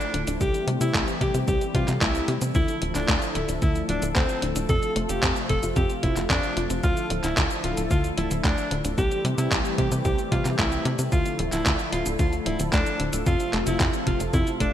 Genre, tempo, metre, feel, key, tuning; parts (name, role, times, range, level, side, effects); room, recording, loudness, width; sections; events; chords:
italo disco; 112 BPM; 4/4; straight; D minor; A4 = 440 Hz
bright alto saxophone; melody; 0.0-14.7 s; C4 to A4; -28 LUFS; equal; ping-pong delay
warm analog pad; sustained chords; 0.0-14.7 s; C3 to A4; -30 LUFS; left 1 dB; chorus
detuned 8-bit digital drum machine; drums; 0.0-14.7 s; cabasa, handclaps, hi-hat; -29 LUFS; equal; gated reverb
soft round pluck; arpeggios; 0.1-14.7 s; C3 to F4; -32 LUFS; left 2 dB; chorus, cassette tape, ping-pong delay
tight sequencer bass; bass; 0.1-14.7 s; D1 to C3; -28 LUFS; equal
electronic kick drum; drums; 0.4-14.7 s; -26 LUFS; equal
moderate lush hall reverb, RT60 2.1 s; bright 1980s-style digital production; -22 LUFS; side -11 dB against mid
0.0-14.7 A section
0.4 Am7/C; 2.5 Dmadd9; 4.7 F; 6.8 Dmadd9; 9.0 Am7/C; 11.1 Dmadd9; 13.3 F